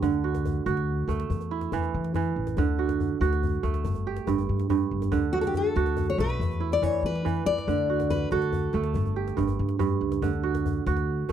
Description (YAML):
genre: west african traditional, West African string and xylophone music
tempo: 94 BPM (dotted quarters)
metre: 12/8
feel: straight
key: D major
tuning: A4 = 440 Hz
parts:
  - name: kora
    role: arpeggios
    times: 0.0-11.3 s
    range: G2 to G4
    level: -28 LUFS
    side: right 10 dB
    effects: none
  - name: upright bass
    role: bass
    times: 0.0-11.3 s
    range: G1 to E3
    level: -29 LUFS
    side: left 1 dB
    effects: none
  - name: djembe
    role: percussion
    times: 0.0-11.3 s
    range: none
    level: -33 LUFS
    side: left 5 dB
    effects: none
  - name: fingerpicked steel-string acoustic guitar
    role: melody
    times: 5.3-9.1 s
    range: F#4 to D5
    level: -28 LUFS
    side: left 6 dB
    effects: none
room: little or no reverb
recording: dry, close 1970s-style studio recording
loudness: -24 LUFS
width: side -9 dB against mid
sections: 0.0-11.3 A section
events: none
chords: 0.0 D; 1.3 A5; 2.6 D; 3.8 N.C.; 5.1 D; 6.4 E5; 7.7 D; 9.0 N.C.; 10.2 D